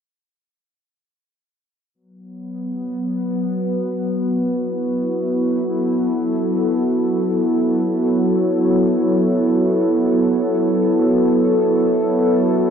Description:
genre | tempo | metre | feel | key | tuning
ambient | free time | none | none | unclear | A4 = 440 Hz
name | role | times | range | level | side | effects
warbly tape-like pad | sustained chords | 2.4-12.7 s | F#3 to C#5 | -17 LUFS | equal | chorus, built-in reverb
analog drone | drone | 2.4-12.7 s | B3 to F#4 | -23 LUFS | equal | chorus
room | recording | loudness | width
wet plate reverb, RT60 3.0 s | cassette tape | -16 LUFS | side -7 dB against mid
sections
1.9-12.7 A section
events
none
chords
1.9 B5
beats
free time

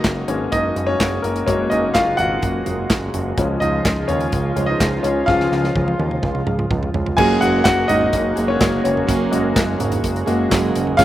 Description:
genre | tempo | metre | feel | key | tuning
piano-driven pop | 126 BPM | 4/4 | straight | F# major | A4 = 440 Hz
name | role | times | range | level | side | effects
clear grand piano | accompaniment | 0.0-11.0 s | E#3 to G#5 | -20 LUFS | left 2 dB | none
chorused pulse-width pad | sustained chords | 0.0-11.0 s | C#3 to F#4 | -25 LUFS | right 1 dB | none
fat analog bass | bass | 0.0-11.0 s | F#1 to D#2 | -24 LUFS | right 1 dB | none
modern studio drum kit | drums | 0.0-11.0 s | crash cymbal, handclaps, hi-hat, kick drum, snare drum, toms | -22 LUFS | equal | none
fingerpicked plugged-in steel-string acoustic guitar | riff | 7.2-11.0 s | C#3 to G#4 | -21 LUFS | right 4 dB | none
room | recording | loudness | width
little or no reverb | recorded outdoors, with no room sound | -16 LUFS | side -13 dB against mid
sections
0.0-7.2 A section; 7.2-11.0 B section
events
grand piano solo 0.0-7.2, 7.2-11.0; drum fill 5.3-7.2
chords
0.0 F#add9; 3.4 C#; 7.2 F#add9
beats
0.04 0.52 0.99 | 1.47 1.95 2.42 2.90 | 3.37 3.85 4.33 4.80 | 5.28 5.75 6.23 6.70 | 7.18 7.66 8.13 8.61 | 9.08 9.56 10.04 10.51 | 10.99

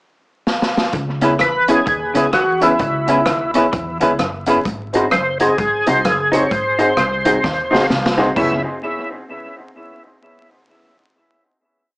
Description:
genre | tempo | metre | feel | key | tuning
ska | 129 BPM | 4/4 | swing 60% on 8ths | C# minor | A4 = 443 Hz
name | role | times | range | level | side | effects
swinging big-band drum kit | drums | 0.5-8.5 s | hi-hat, kick drum, rim click, snare drum, splash cymbal, toms | -22 LUFS | equal | analog delay
semi-hollow electric guitar | riff | 0.9-8.1 s | F#2 to E3 | -29 LUFS | equal | lush chorus, analog delay
upright bass | bass | 0.9-8.6 s | F#1 to E2 | -28 LUFS | equal | none
vintage hollow-body jazz guitar | accompaniment | 1.2-8.5 s | C#4 to C#5 | -20 LUFS | equal | analog delay
dark upright piano | stabs | 1.2-8.6 s | B3 to G#4 | -21 LUFS | equal | analog delay
overdriven tonewheel organ | melody | 1.4-8.6 s | E4 to E5 | -18 LUFS | equal | chorus vibrato, slow rotary speaker, analog delay
room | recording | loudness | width
moderate club reverb, RT60 0.6 s | vinyl crackle, small speaker sound | -14 LUFS | side -26 dB against mid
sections
0.0-0.9 pickup bar; 0.9-8.4 head; 8.4-10.2 final chord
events
drum fill 0.5-0.9, 7.4-8.4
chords
0.0 N.C.; 0.9 C#m7; 4.7 G#7; 8.4 C#m7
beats
0.01 0.48 | 0.94 1.41 1.87 2.33 | 2.80 3.26 3.73 4.19 | 4.66 5.12 5.58 6.05 | 6.51 6.97 7.43 7.90 | 8.36

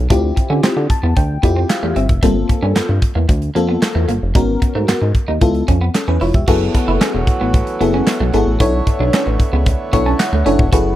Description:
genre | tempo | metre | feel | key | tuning
early-eighties boogie funk | 113 BPM | 4/4 | straight | F# minor from 6.5 s | A4 = 440 Hz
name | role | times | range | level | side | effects
chorused synth bass | bass | 0.0-10.9 s | E1 to D3 | -17 LUFS | equal | none
FM electric piano with soft pad layer | accompaniment | 0.1-11.0 s | Bb3 to C#6 | -19 LUFS | left 3 dB | chorus
electric guitar at the edge of break-up | riff | 0.1-10.8 s | G3 to F#4 | -23 LUFS | right 3 dB | lush chorus
modern studio drum kit | drums | 0.1-10.8 s | crash cymbal, handclaps, hi-hat, kick drum, snare drum | -16 LUFS | equal | none
hand-pumped harmonium | sustained chords | 6.5-11.0 s | D3 to C#5 | -23 LUFS | right 2 dB | none
room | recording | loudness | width
studio ambience | dry, close 1970s-style studio recording | -13 LUFS | side -13 dB against mid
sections
0.0-6.5 A section; 6.5-11.0 B section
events
FM electric piano fill 0.6-2.2, 9.7-10.7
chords
0.1 Dm11; 2.2 Gm11; 4.4 G#m11; 5.4 C#7alt; 6.5 F#m11; 8.6 Bm11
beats
| 0.10 0.64 1.17 1.70 | 2.23 2.76 3.29 3.82 | 4.35 4.88 5.42 5.95 | 6.48 7.01 7.54 8.07 | 8.60 9.13 9.66 10.19 | 10.72

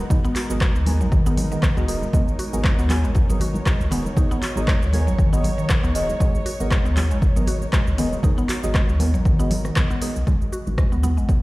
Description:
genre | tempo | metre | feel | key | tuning
afro house | 118 BPM | 4/4 | swing 56% on 16ths | G# minor | A4 = 440 Hz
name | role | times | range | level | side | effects
muted chamber string section | sustained chords | 0.0-10.3 s | G#3 to C#5 | -33 LUFS | equal | sidechain pumping
warm sub bass | bass | 0.0-11.4 s | D#1 to D#2 | -23 LUFS | equal | sidechain pumping
mallet-like synth pluck | arpeggios | 0.1-11.3 s | D#3 to F#4 | -28 LUFS | equal | chorus, sidechain pumping, dub echo
deep mellow chord stab | stabs | 0.1-11.1 s | B3 to G#5 | -30 LUFS | right 2 dB | chorus, phaser, cassette tape, sidechain pumping, dub echo
deep house drum kit | drums | 0.1-11.4 s | handclaps, hi-hat, rim click, shaker | -29 LUFS | equal | none
electronic kick drum | drums | 0.1-11.4 s | none | -20 LUFS | equal | none
congas | percussion | 0.1-11.4 s | none | -30 LUFS | equal | none
room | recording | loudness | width
little or no reverb | played on a big sound system in a bare room, stone room reverb | -18 LUFS | side -20 dB against mid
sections
0.0-10.3 A section; 10.3-11.4 B section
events
drop 0.0-10.3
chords
0.0 G#m9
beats
| 0.10 0.61 1.12 1.63 | 2.14 2.64 3.15 3.66 | 4.17 4.68 5.19 5.70 | 6.20 6.71 7.22 7.73 | 8.24 8.75 9.25 9.76 | 10.27 10.78 11.29

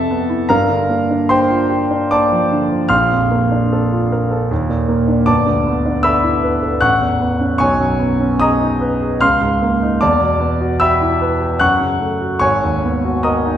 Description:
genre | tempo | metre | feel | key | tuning
classical, impressionist solo piano | 75 BPM | 3/4 | rubato | unclear | A4 = 440 Hz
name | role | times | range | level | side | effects
clear concert grand piano | solo | 0.0-13.6 s | G1 to F#6 | -13 LUFS | equal | none
room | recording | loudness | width
wet scoring stage reverb, RT60 1.5 s | heard from further back in the room | -13 LUFS | side -10 dB against mid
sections
0.0-13.6 A section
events
none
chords
0.5 Gm7; 2.9 Bbmaj7; 4.5 D#5; 5.3 G69; 6.8 A69; 7.6 B69; 9.2 C#69; 10.0 Em9; 11.6 F#m; 12.4 G#m9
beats
| 0.50 1.31 2.12 | 2.92 3.73 4.50 | 5.28 6.06 6.84 | 7.62 8.41 9.21 | 10.02 10.81 11.61 | 12.41 13.24

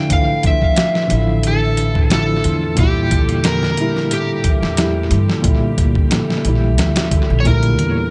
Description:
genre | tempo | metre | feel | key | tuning
trip hop | 90 BPM | 4/4 | swing 53% on 16ths | unclear | A4 = 440 Hz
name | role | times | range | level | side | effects
overdriven slide guitar | melody | 0.0-8.1 s | G4 to G5 | -24 LUFS | equal | vintage 12-bit sampler grit, tape echo
felt-muted upright piano | accompaniment | 0.0-8.1 s | Bb2 to E4 | -23 LUFS | equal | tremolo, tape echo
concert harp | arpeggios | 0.0-8.1 s | A2 to F4 | -25 LUFS | equal | vintage 12-bit sampler grit, tape echo
dusty soul sampler-style drum kit | drums | 0.1-8.0 s | hi-hat, kick drum, snare drum | -20 LUFS | equal | tape echo
upright bass | bass | 1.1-8.1 s | A1 to G2 | -20 LUFS | equal | none
room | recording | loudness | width
little or no reverb | echo-heavy mix, nothing above 10.5 kHz | -16 LUFS | mono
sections
0.0-8.1 A section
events
none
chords
0.0 Dmadd9; 2.8 Edim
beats
| 0.11 0.78 1.45 2.11 | 2.78 3.44 4.11 4.78 | 5.45 6.11 6.78 7.45

